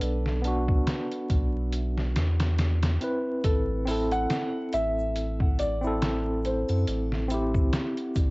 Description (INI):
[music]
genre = trip hop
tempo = 70 BPM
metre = 4/4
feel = swing 56% on 16ths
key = A dorian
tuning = A4 = 439 Hz
[part]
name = felt-muted upright piano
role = melody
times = 0.0-8.3 s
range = A4 to F#5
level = -33 LUFS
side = equal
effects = cassette tape, tape echo
[part]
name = tine electric piano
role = accompaniment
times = 0.0-8.3 s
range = B3 to B4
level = -30 LUFS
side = equal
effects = tremolo
[part]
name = warm sub bass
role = bass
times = 0.0-8.3 s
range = A1 to F#2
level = -28 LUFS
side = equal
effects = none
[part]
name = trip hop sampler-style drum kit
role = drums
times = 0.0-8.3 s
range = hi-hat, kick drum, snare drum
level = -27 LUFS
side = equal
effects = cassette tape
[part]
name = egg shaker and triangle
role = percussion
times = 3.4-8.3 s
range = none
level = -56 LUFS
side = left 6 dB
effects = none
[sound]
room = light reverb, digital ambience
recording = home recording on cassette, vinyl crackle, nothing above 7.9 kHz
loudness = -24 LUFS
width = side -25 dB against mid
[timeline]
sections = 0.0-8.3 A section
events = none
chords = 0.0 Bm7; 3.4 Am